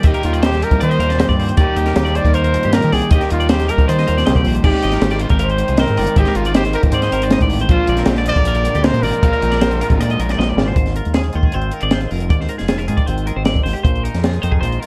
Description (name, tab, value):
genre	math rock and midwest emo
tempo	157 BPM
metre	4/4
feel	straight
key	Ab lydian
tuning	A4 = 439 Hz
part	twangy electric guitar	accompaniment	0.0-14.9 s	F2 to C5	-30 LUFS	equal	subtle chorus, plate reverb
part	clean electric guitar	arpeggios	0.0-14.9 s	G4 to F5	-27 LUFS	equal	lush chorus, plate reverb
part	crunchy overdriven guitar	riff	0.0-10.8 s	Ab2 to Eb4	-25 LUFS	equal	none
part	growling fingered electric bass	bass	0.0-14.8 s	F1 to Eb3	-21 LUFS	equal	overdrive
part	compact cocktail drum kit	drums	0.0-14.9 s	crash cymbal, hi-hat, kick drum, snare drum	-19 LUFS	equal	none
part	warm trumpet	melody	0.1-10.4 s	F4 to D5	-22 LUFS	equal	slapback echo, plate reverb
room	little or no reverb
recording	dark, warm production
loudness	-16 LUFS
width	mono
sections	0.0-10.8 A section; 10.8-14.9 B section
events	drum fill 10.4-10.8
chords	0.0 Eb6; 4.6 Abmaj7; 7.7 Bb9; 10.8 Ab6; 13.8 Bb7sus4